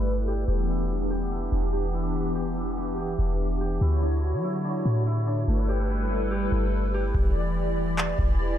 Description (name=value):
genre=hip hop, atmospheric cloud-rap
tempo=144 BPM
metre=4/4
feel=half-time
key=E dorian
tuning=A4 = 445 Hz
part: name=hollow soft pad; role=sustained chords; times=0.0-8.6 s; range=D3 to D5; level=-29 LUFS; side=left 1 dB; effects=ensemble chorus, sidechain pumping
part: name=Celtic harp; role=arpeggios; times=0.0-8.6 s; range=E3 to G4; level=-34 LUFS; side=right 1 dB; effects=low-pass filter, tape echo
part: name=clean 808-style bass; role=bass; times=0.0-8.6 s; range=E1 to F#3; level=-26 LUFS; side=equal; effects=none
part: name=booming analog drum machine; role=drums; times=7.1-8.4 s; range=handclaps, kick drum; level=-24 LUFS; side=equal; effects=none
room=little or no reverb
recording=low-pass filter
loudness=-24 LUFS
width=side -10 dB against mid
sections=0.0-7.1 A section; 7.1-8.6 B section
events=filter sweep 0.0-7.1; hi-hats muted 7.1-8.6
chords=0.5 Em7; 3.8 Dmaj9; 5.5 G69; 7.1 Em7